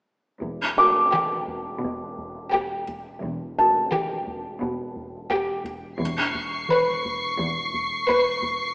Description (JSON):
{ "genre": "cinematic, suspense film score", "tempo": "86 BPM", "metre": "4/4", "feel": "straight", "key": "E minor", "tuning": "A4 = 440 Hz", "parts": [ { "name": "rubbery square bass", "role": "riff", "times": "0.4-8.6 s", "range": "E2 to E3", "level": "-37 LUFS", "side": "equal", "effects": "none" }, { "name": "dark studio double bass section", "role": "bass", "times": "0.4-6.5 s", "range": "E1", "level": "-38 LUFS", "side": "equal", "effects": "none" }, { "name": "warm studio cello section", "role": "bass", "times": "0.4-7.9 s", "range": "E2 to B2", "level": "-32 LUFS", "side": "equal", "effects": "none" }, { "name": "sub bass with octave", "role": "drone", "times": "0.4-8.7 s", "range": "E1", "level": "-44 LUFS", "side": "equal", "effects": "none" }, { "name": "felt-muted upright piano", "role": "texture", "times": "0.8-6.0 s", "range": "A5 to D6", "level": "-22 LUFS", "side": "equal", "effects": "none" }, { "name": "rich studio violin section", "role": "melody", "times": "1.1-8.6 s", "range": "G4 to B4", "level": "-24 LUFS", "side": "left 1 dB", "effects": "none" }, { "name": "dark studio violin section", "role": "texture", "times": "6.0-8.7 s", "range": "C#6 to C7", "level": "-26 LUFS", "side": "equal", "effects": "none" } ], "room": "wet scoring stage reverb, RT60 1.7 s", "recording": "small speaker sound", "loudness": "-21 LUFS", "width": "side -26 dB against mid", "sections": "0.4-8.7 A section", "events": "none", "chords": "0.4 Em; 6.0 Cmaj7/E" }